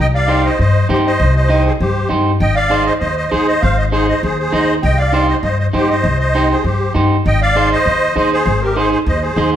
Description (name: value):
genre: latin, cumbia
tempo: 198 BPM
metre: 4/4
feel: straight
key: C minor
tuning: A4 = 440 Hz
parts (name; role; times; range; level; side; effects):
- musette accordion; melody; 0.0-9.5 s; G4 to G5; -16 LUFS; equal; none
- upright bass; bass; 0.0-9.6 s; Ab1 to G2; -16 LUFS; left 1 dB; none
- electric guitar at the edge of break-up; accompaniment; 0.3-9.6 s; Eb4 to Eb5; -18 LUFS; right 2 dB; none
room: wet large studio reverb, RT60 1.2 s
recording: band playing live in one room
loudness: -12 LUFS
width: side -10 dB against mid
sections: 0.0-9.6 A section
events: none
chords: 0.0 Cm; 2.4 Ab; 4.8 Cm; 7.3 Ab